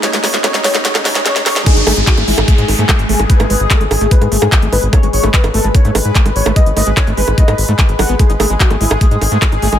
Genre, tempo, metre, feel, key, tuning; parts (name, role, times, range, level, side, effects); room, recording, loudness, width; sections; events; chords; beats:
psychedelic trance; 147 BPM; 4/4; straight; G# phrygian; A4 = 441 Hz
wide unison lead; melody; 0.0-9.7 s; E4 to F#5; -20 LUFS; left 1 dB; phaser, sidechain pumping, digital delay
bubbling stepped-filter texture; sustained chords; 0.0-9.8 s; G#3 to B4; -20 LUFS; left 2 dB; chorus, built-in reverb, sidechain pumping
overdriven acid bass; riff; 0.0-9.8 s; F#3 to D#4; -23 LUFS; moving between left 6 dB and right 6 dB; distortion, auto-pan, sidechain pumping, dub echo
drum and bass drum kit; drums; 0.0-9.8 s; bongos, crash cymbal, handclaps, hi-hat, snare drum; -16 LUFS; right 1 dB; high-pass filter on snare, high-pass filter on hats, high-pass filter on perc, high-pass filter on cymbals, high-pass filter on room
riser and downlifter; sound effects; 0.0-4.9 s; -22 LUFS; right 1 dB
deep dark ambient pad; texture; 0.0-1.7 s; D#4 to D#6; -29 LUFS; right 2 dB
electronic kick drum; drums; 1.7-9.5 s; -11 LUFS; equal
round analog bass; bass; 1.8-9.8 s; G#1 to G#2; -16 LUFS; equal
little or no reverb; high-pass filter; -10 LUFS; side -10 dB against mid
0.0-1.7 A section; 1.7-9.8 B section
build-up 0.0-1.7; drum fill 0.0-1.7; riser 0.0-1.7; filter sweep on acid bass 0.0-1.7; filter sweep on analog synth lead 0.0-1.7; drop 1.7-9.8
0.0 G#5
| 0.03 0.44 0.85 1.26 | 1.66 2.07 2.48 2.89 | 3.30 3.71 4.11 4.52 | 4.93 5.34 5.75 6.15 | 6.56 6.97 7.38 7.79 | 8.20 8.60 9.01 9.42